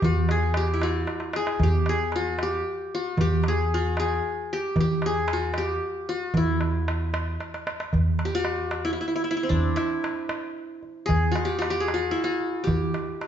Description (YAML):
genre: Arabic maqam ensemble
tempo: 76 BPM (dotted quarters)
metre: 6/8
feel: straight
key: E maqam saba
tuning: A4 = 441 Hz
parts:
  - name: qanun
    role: melody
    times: 0.0-13.3 s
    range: C4 to G#4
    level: -26 LUFS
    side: left 1 dB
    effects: none
  - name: upright bass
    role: bass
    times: 0.0-12.9 s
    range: E2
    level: -27 LUFS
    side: right 1 dB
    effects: none
  - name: darbuka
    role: percussion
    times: 0.0-13.3 s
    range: none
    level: -28 LUFS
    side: right 1 dB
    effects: none
room: wet large studio reverb, RT60 1.2 s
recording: band playing live in one room, nothing above 7.7 kHz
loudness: -23 LUFS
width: side -9 dB against mid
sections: 0.0-7.9 A section; 7.9-13.3 B section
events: drum fill 1.1-1.6, 7.4-7.9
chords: none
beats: | 0.02 0.81 | 1.59 2.38 | 3.17 3.96 | 4.75 5.55 | 6.34 7.13 | 7.92 8.71 | 9.51 10.30 | 11.09 11.89 | 12.68